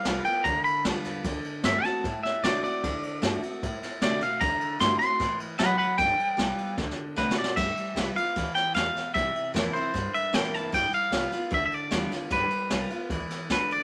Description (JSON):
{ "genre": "rockabilly", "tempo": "152 BPM", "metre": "4/4", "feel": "straight", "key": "G mixolydian", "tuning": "A4 = 440 Hz", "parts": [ { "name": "twangy electric guitar", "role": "melody", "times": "0.0-13.8 s", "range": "B4 to C6", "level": "-29 LUFS", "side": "equal", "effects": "none" }, { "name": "picked steel-string acoustic guitar", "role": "accompaniment", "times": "0.0-13.8 s", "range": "G2 to F#4", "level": "-35 LUFS", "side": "equal", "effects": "none" }, { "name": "upright bass", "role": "bass", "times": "0.1-13.8 s", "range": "F#1 to C3", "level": "-40 LUFS", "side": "equal", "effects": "none" }, { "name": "jazz brush drum kit", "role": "drums", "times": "0.1-13.8 s", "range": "crash cymbal, kick drum, ride cymbal, snare drum", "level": "-33 LUFS", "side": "equal", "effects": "none" } ], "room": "light reverb", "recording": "none", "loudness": "-27 LUFS", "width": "mono", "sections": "0.0-7.6 A section; 7.6-13.8 B section", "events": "clean electric guitar solo 0.0-7.6; drum fill 6.8-7.6", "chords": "0.0 G7; 1.2 D7; 6.0 G7; 6.8 D7; 7.6 G7; 9.1 C7; 10.7 G7" }